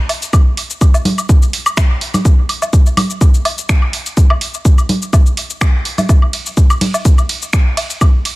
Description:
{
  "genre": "techno",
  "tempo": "125 BPM",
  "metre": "4/4",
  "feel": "swing 54% on 16ths",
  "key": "none",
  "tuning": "none",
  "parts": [
    { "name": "punchy analog drum machine", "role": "drums", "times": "0.1-8.4 s", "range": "cabasa, finger snaps, hi-hat, ride cymbal", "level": "-20 LUFS", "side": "equal", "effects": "none" },
    { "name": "woodblock and congas", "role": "percussion", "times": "0.1-8.1 s", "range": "none", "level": "-18 LUFS", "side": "equal", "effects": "overdrive, dub echo" },
    { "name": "electronic kick drum", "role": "drums", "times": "0.3-8.1 s", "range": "none", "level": "-10 LUFS", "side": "equal", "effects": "none" }
  ],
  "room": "little or no reverb",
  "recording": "none",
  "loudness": "-11 LUFS",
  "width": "side -20 dB against mid",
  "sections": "0.0-8.4 A section",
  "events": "none",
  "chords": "none"
}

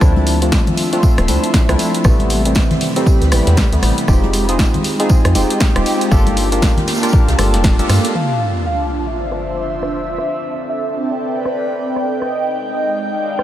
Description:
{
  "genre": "deep house",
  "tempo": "118 BPM",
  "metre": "4/4",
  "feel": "swing 60% on 16ths",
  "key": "D minor",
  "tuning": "A4 = 438 Hz",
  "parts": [
    { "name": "barky tine electric piano", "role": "stabs", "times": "0.0-8.1 s", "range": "C3 to Bb4", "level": "-18 LUFS", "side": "equal", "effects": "analog chorus, sidechain pumping, diffuse ambient delay" },
    { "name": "woody FM bass", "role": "bass", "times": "0.0-8.0 s", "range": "D1 to G2", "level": "-16 LUFS", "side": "equal", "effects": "sidechain pumping" },
    { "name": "electronic kick drum", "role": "drums", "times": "0.0-7.8 s", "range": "none", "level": "-14 LUFS", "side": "equal", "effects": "none" },
    { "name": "jazz brush drum kit", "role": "drums", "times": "0.0-8.1 s", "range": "hi-hat, snare drum, tambourine", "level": "-30 LUFS", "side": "right 2 dB", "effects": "high-pass filter on hats, high-pass filter on snare, high-pass filter on perc, high-pass filter on room" },
    { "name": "punchy analog drum machine", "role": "drums", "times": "0.0-13.4 s", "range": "crash cymbal, hi-hat, rim click, snare drum", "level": "-22 LUFS", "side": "equal", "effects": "low-pass filter on hats, low-pass filter on snare, low-pass filter on cymbals" },
    { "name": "airy breathy pad", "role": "texture", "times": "0.0-13.4 s", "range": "F3 to C6", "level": "-23 LUFS", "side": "right 1 dB", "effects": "chorus, phaser, sidechain pumping" },
    { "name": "congas", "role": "percussion", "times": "0.2-7.9 s", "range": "none", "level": "-26 LUFS", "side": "left 2 dB", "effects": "none" },
    { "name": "deep dark ambient pad", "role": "sustained chords", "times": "9.3-13.4 s", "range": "C4 to D5", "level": "-38 LUFS", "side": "equal", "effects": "chorus, built-in reverb, sidechain pumping" },
    { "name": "sub drop", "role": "sound effects", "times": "8.1-10.2 s", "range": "none", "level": "-23 LUFS", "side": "equal", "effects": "none" },
    { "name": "warm velvety synth lead", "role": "melody", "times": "8.2-13.4 s", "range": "D5 to F5", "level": "-22 LUFS", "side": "equal", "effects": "chorus, tape echo" }
  ],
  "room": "light reverb, studio reverb",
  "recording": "none",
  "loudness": "-13 LUFS",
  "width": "side -12 dB against mid",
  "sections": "0.0-8.1 A section; 8.1-13.4 B section",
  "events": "band accent 7.6; impact 8.1-10.2; filter sweep on drum 8.1-13.4; filter sweep on ambient pad 8.1-13.4",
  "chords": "0.0 Dm9; 2.0 Am9; 4.1 Fm9; 6.1 Gm9; 8.1 Dm9; 10.2 Am9; 12.2 Fm9"
}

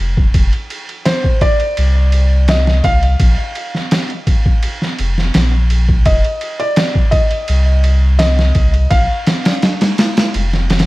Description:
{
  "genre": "trip hop",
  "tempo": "84 BPM",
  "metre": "4/4",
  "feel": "straight",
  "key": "unclear",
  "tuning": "A4 = 443 Hz",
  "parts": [
    { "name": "warm sub bass", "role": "bass", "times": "0.0-10.9 s", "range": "F1 to C2", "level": "-12 LUFS", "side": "equal", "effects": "none" },
    { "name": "trip hop sampler-style drum kit", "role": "drums", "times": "0.2-10.9 s", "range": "kick drum, ride cymbal, snare drum", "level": "-15 LUFS", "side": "equal", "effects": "none" },
    { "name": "felt-muted upright piano", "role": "melody", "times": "1.1-10.9 s", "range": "C5 to F5", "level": "-20 LUFS", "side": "equal", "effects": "tape echo" }
  ],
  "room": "digital ambience",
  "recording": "vinyl crackle",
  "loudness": "-12 LUFS",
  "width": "side -19 dB against mid",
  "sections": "0.0-10.9 A section",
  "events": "kick drops out 10.3-10.9",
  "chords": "0.3 N.C.; 3.2 Bb5; 6.1 N.C.; 8.9 Bb5"
}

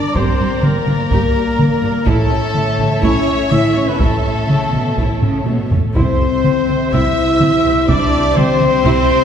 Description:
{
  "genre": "cinematic, epic orchestral film score",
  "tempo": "125 BPM",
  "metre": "4/4",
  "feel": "straight",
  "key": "unclear",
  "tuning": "A4 = 439 Hz",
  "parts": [
    { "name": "warm symphonic violin section", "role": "melody", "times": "0.0-9.2 s", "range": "A4 to E5", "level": "-25 LUFS", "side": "left 4 dB", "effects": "none" },
    { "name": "hollow concert flute", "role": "second line", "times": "0.0-9.2 s", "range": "A5 to E6", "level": "-24 LUFS", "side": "equal", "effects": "none" },
    { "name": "warm symphonic violin section", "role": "second line", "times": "0.0-9.2 s", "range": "C5 to Bb5", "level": "-27 LUFS", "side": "left 2 dB", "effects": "none" },
    { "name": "warm studio viola section", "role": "accompaniment", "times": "0.0-9.2 s", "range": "G3 to Bb4", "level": "-25 LUFS", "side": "right 2 dB", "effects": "none" },
    { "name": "mellow French horn section", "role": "sustained chords", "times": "0.0-9.2 s", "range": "A3 to E4", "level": "-18 LUFS", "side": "left 2 dB", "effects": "none" },
    { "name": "clear trumpet", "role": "stabs", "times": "0.0-9.2 s", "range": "A4 to E5", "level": "-24 LUFS", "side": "right 3 dB", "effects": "none" },
    { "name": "dark symphonic double bass section", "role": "bass", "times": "0.2-8.9 s", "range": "G1 to C2", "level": "-22 LUFS", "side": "right 2 dB", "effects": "none" },
    { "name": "warm symphonic cello section", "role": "bass", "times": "0.2-8.9 s", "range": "G2 to C#3", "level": "-22 LUFS", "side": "right 2 dB", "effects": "none" },
    { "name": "taiko ensemble", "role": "drums", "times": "0.2-9.2 s", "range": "none", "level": "-18 LUFS", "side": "equal", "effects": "none" }
  ],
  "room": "wet scoring stage reverb, RT60 1.8 s",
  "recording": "heard from further back in the room",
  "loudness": "-12 LUFS",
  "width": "side -8 dB against mid",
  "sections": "0.0-9.2 A section",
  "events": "drum fill 5.2-6.0",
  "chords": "0.0 Gm; 2.1 A; 6.0 C"
}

